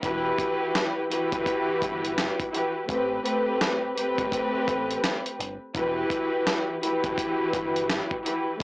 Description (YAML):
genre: hip hop, boom-bap hip-hop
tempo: 84 BPM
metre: 4/4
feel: swing 61% on 16ths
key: unclear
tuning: A4 = 439 Hz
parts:
  - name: warm studio string section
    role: accompaniment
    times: 0.0-8.6 s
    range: A2 to B4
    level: -25 LUFS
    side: equal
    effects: cassette tape, high-pass filter, low-pass filter
  - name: deep dub picked electric bass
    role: bass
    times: 0.0-8.6 s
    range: E1 to A1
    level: -39 LUFS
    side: equal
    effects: transformer saturation
  - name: dusty soul sampler-style drum kit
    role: drums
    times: 0.0-8.6 s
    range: hi-hat, kick drum, snare drum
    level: -29 LUFS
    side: equal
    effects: none
room: light reverb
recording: blown-out, overdriven recording, overdrive, small speaker sound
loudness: -24 LUFS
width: side -23 dB against mid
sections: 0.0-8.6 A section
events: none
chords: 0.0 Emadd9; 2.9 Am7; 5.7 Emadd9